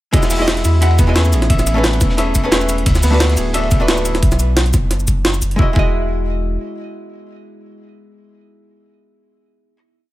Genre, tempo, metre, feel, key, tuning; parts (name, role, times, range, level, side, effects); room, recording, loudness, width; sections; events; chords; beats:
liquid drum and bass; 176 BPM; 4/4; swing 54% on 16ths; E major; A4 = 440 Hz
archtop guitar, miked and amplified; accompaniment; 0.1-9.8 s; G#3 to F#5; -21 LUFS; equal; digital delay
concert harp; arpeggios; 0.1-8.4 s; B3 to E5; -24 LUFS; left 1 dB; digital delay
warm sub bass; bass; 0.1-6.6 s; D1 to E2; -17 LUFS; equal
crunchy breakbeat drum kit; drums; 0.1-4.1 s; hi-hat, ride cymbal, snare drum; -26 LUFS; equal; high-pass filter on cymbals, small room reverb, high-pass filter on hats, high-pass filter on snare, high-pass filter on room
electronic kick drum; drums; 0.1-5.9 s; -15 LUFS; equal; overdrive, small room reverb
jungle sampler-style drum kit; drums; 0.1-5.6 s; cabasa, hi-hat, snare drum; -18 LUFS; right 1 dB; overdrive, small room reverb
little or no reverb; -13 LUFS; side -16 dB against mid
0.1-5.6 drop; 5.6-8.3 final chord
drop 0.1-5.6
0.1 Emaj9; 1.3 Amaj9; 2.9 D6; 4.2 B5; 5.6 Emaj9
| 0.14 0.48 0.82 1.16 | 1.50 1.84 2.18 2.52 | 2.86 3.20 3.54 3.88 | 4.23 4.57 4.91 5.25 | 5.59 5.93 6.27 6.61 | 6.95 7.29 7.63 7.98